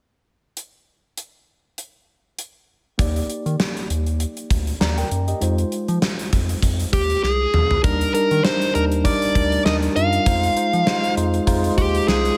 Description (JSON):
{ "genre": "1980s-style pop", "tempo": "99 BPM", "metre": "4/4", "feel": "swing 55% on 16ths", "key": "Eb major", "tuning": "A4 = 440 Hz", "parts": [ { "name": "gated 80s drum kit", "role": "drums", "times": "0.6-12.4 s", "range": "hi-hat, kick drum, snare drum, toms", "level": "-25 LUFS", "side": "equal", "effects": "gated reverb" }, { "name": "tine electric piano", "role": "accompaniment", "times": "3.0-12.4 s", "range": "G3 to Bb5", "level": "-26 LUFS", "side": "equal", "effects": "none" }, { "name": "round analog bass", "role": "bass", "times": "3.0-12.3 s", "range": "C2 to F3", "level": "-25 LUFS", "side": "equal", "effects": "none" }, { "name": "dark smooth lead guitar", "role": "melody", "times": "6.9-12.4 s", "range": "G4 to F5", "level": "-23 LUFS", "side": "equal", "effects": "overdrive" } ], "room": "light reverb, small room ambience", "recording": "none", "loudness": "-20 LUFS", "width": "mono", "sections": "0.6-3.0 A section; 3.0-7.8 B section; 7.8-12.4 C section", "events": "drum fill 7.2-7.8", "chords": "0.6 N.C.; 3.0 Ebmaj7; 5.4 Fm7; 7.8 Ebmaj7; 10.3 Fm7", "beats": "| 0.57 1.17 1.78 2.38 | 2.99 3.60 4.20 4.81 | 5.41 6.02 6.63 7.23 | 7.84 8.45 9.05 9.66 | 10.26 10.87 11.47 12.08" }